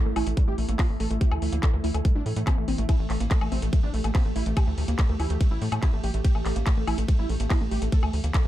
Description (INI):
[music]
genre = psychedelic trance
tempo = 143 BPM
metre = 4/4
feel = straight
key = unclear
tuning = A4 = 440 Hz
[part]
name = evolving wavetable pad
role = sustained chords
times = 0.0-8.5 s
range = E3 to G4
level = -37 LUFS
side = right 2 dB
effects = chorus, built-in reverb, sidechain pumping
[part]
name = wide unison lead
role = melody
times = 0.1-8.5 s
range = A3 to A4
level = -32 LUFS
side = equal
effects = phaser, sidechain pumping, tape echo
[part]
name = woody wave-folded pluck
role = riff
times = 0.1-8.5 s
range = G3 to Bb4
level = -36 LUFS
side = moving between left 3 dB and right 4 dB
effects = chorus, auto-pan, sidechain pumping, digital delay
[part]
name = tight sequencer bass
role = bass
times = 0.1-8.5 s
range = A1 to A2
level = -27 LUFS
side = equal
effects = none
[part]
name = techno drum kit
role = drums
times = 0.2-8.4 s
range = handclaps, hi-hat, ride cymbal, woodblock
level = -34 LUFS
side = left 2 dB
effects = none
[part]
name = electronic kick drum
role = drums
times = 0.4-8.4 s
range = none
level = -22 LUFS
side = equal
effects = none
[sound]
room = little or no reverb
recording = dark, warm production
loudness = -22 LUFS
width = side -14 dB against mid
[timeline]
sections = 0.0-8.5 A section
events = none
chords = 0.0 A5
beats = 0.37 0.79 | 1.21 1.63 2.05 2.47 | 2.89 3.31 3.73 4.15 | 4.57 4.99 5.41 5.83 | 6.25 6.67 7.08 7.50 | 7.92 8.34